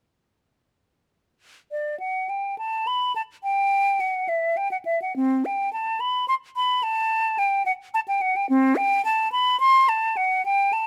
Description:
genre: classical, baroque-style fantasia for unaccompanied flute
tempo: 106 BPM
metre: 3/4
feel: rubato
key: G major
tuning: A4 = 445 Hz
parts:
  - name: hollow concert flute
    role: solo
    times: 1.7-10.9 s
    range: C4 to C6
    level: -23 LUFS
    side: equal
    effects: none
room: little or no reverb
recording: close, detailed microphones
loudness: -23 LUFS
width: mono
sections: 1.7-10.9 A section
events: none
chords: none

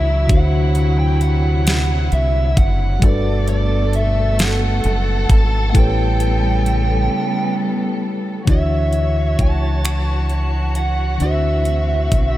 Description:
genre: slow six-eight R&B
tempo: 44 BPM (dotted quarters)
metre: 6/8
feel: straight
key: D major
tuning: A4 = 440 Hz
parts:
  - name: bluesy overdriven lead guitar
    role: melody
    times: 0.0-12.4 s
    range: D5 to A5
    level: -24 LUFS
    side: right 2 dB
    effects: distortion, tape echo
  - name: mellow tine electric piano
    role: accompaniment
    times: 0.0-12.4 s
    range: D3 to D5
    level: -24 LUFS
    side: left 3 dB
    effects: medium stereo tremolo
  - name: warm studio string section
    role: sustained chords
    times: 0.0-12.4 s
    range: B2 to C#5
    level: -25 LUFS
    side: equal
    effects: none
  - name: deep dub fingered electric bass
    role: bass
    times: 0.0-12.4 s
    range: F#1 to D2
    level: -17 LUFS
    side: equal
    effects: none
  - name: smooth R&B drum kit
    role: drums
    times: 0.3-12.3 s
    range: finger snaps, hi-hat, kick drum, snare drum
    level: -17 LUFS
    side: equal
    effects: none
room: light reverb, digital ambience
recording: none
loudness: -15 LUFS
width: side -15 dB against mid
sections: 0.0-8.5 A section; 8.5-12.4 B section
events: break 7.1-8.5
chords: 0.3 D9; 3.0 Gmaj9; 5.8 A9; 8.5 Dmaj9; 11.2 D9

